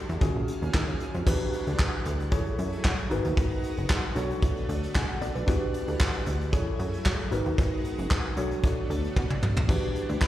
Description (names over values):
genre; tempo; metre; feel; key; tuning
early-eighties boogie funk; 114 BPM; 4/4; straight; unclear; A4 = 445 Hz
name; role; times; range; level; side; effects
tine electric piano; accompaniment; 0.0-10.3 s; C#4 to B5; -32 LUFS; left 1 dB; medium stereo tremolo, tube saturation, slapback echo
lush unison pad; sustained chords; 0.0-10.3 s; D#3 to A#5; -39 LUFS; right 2 dB; chorus
plucky analog bass; bass; 0.1-10.2 s; F#1 to F#3; -30 LUFS; equal; none
vintage brush drum kit; drums; 0.1-10.3 s; crash cymbal, handclaps, hi-hat, kick drum, snare drum, toms; -27 LUFS; equal; none
room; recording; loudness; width
studio ambience; live gig heard through the venue's PA, recital hall reverb; -25 LUFS; side -13 dB against mid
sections
0.0-1.3 A section; 1.3-10.3 B section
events
drum fill 9.2-9.7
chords
0.2 D#m11; 1.3 Em9; 2.3 F#m9; 3.1 G#m9; 4.2 Bm9; 5.5 Em9; 6.5 F#m9; 7.3 G#m9; 8.4 Bm9; 9.7 Em9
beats
0.21 0.74 | 1.27 1.79 2.32 2.85 | 3.37 3.90 4.43 4.95 | 5.48 6.00 6.53 7.06 | 7.58 8.11 8.64 9.16 | 9.69 10.21